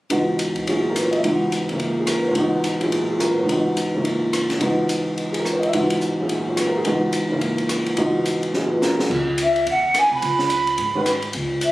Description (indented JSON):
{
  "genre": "modal jazz",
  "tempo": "214 BPM",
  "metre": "4/4",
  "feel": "swing 60% on 8ths",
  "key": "C# dorian",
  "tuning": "A4 = 440 Hz",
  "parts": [
    { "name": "warm baby grand piano", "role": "accompaniment", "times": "0.1-11.1 s", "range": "C#2 to E5", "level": "-19 LUFS", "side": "equal", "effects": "none" },
    { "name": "open jazz drum kit", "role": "drums", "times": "0.1-11.7 s", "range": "crash cymbal, hi-hat, kick drum, ride cymbal, rim click, snare drum", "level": "-27 LUFS", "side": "left 1 dB", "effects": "none" },
    { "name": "upright bass", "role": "bass", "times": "9.1-11.7 s", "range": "B#1 to G#2", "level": "-25 LUFS", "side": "equal", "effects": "none" },
    { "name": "breathy mellow jazz flute", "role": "melody", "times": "9.4-11.7 s", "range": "E5 to B5", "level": "-18 LUFS", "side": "right 1 dB", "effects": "plate reverb" }
  ],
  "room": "wet large studio reverb, RT60 0.9 s",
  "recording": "recorded on a phone in the room, club reverb",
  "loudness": "-18 LUFS",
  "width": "side -17 dB against mid",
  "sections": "0.1-9.1 A section; 9.1-11.7 B section",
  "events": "drum fill 8.5-9.1",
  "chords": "0.1 C#m11; 9.1 C#m7"
}